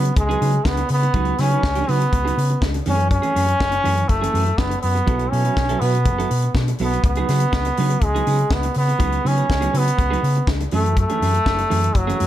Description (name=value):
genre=disco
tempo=122 BPM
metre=4/4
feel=straight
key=unclear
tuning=A4 = 440 Hz
part: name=brilliant trombone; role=melody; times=0.0-12.3 s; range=F#3 to C#4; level=-21 LUFS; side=right 1 dB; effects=none
part: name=clean electric guitar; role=accompaniment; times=0.0-12.3 s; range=E3 to B4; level=-26 LUFS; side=right 6 dB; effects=lush chorus
part: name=overdriven fingered electric bass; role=bass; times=0.0-12.3 s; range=F#1 to C#3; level=-21 LUFS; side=left 1 dB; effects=none
part: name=tight funk drum kit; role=drums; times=0.1-12.3 s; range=hi-hat, kick drum, snare drum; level=-23 LUFS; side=left 1 dB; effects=none
room=studio reverb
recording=dark, warm production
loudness=-17 LUFS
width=side -12 dB against mid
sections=0.0-12.3 A section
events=none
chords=0.0 C#9sus4; 2.9 F#m9; 5.1 B7sus4; 7.0 C#9sus4; 10.7 F#m9